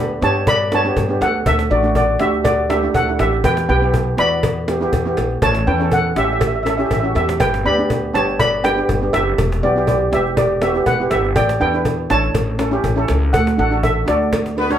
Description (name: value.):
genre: calypso.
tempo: 121 BPM.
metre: 4/4.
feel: swing 53% on 16ths.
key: D major.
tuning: A4 = 442 Hz.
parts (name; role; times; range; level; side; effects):
steel pan; melody; 0.0-14.8 s; F#4 to B5; -18 LUFS; right 1 dB; none.
steel pan; accompaniment; 0.0-14.8 s; A3 to B4; -22 LUFS; right 1 dB; none.
upright bass; bass; 0.0-14.7 s; E1 to G2; -21 LUFS; equal; none.
cajon; drums; 0.2-14.8 s; none; -24 LUFS; left 1 dB; none.
cowbell; percussion; 0.5-14.7 s; none; -25 LUFS; equal; none.
clear horn section; second line; 14.6-14.8 s; B3 to C#5; -19 LUFS; left 1 dB; none.
room: wet small room reverb, RT60 0.5 s.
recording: heard from further back in the room.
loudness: -14 LUFS.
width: side -10 dB against mid.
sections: 0.0-14.8 A section.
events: drum fill 7.2, 14.3-14.8.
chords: 0.0 Gadd9; 1.5 Dadd9; 3.4 Em7; 5.4 A; 7.4 G; 9.4 Em; 11.4 Asus4; 12.3 A; 13.3 D.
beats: 0.47 0.97 | 1.46 1.96 2.46 2.95 | 3.44 3.94 4.44 4.93 | 5.42 5.92 6.42 6.91 | 7.41 7.90 8.39 8.89 | 9.38 9.88 10.37 10.87 | 11.36 11.86 12.35 12.84 | 13.34 13.83 14.33.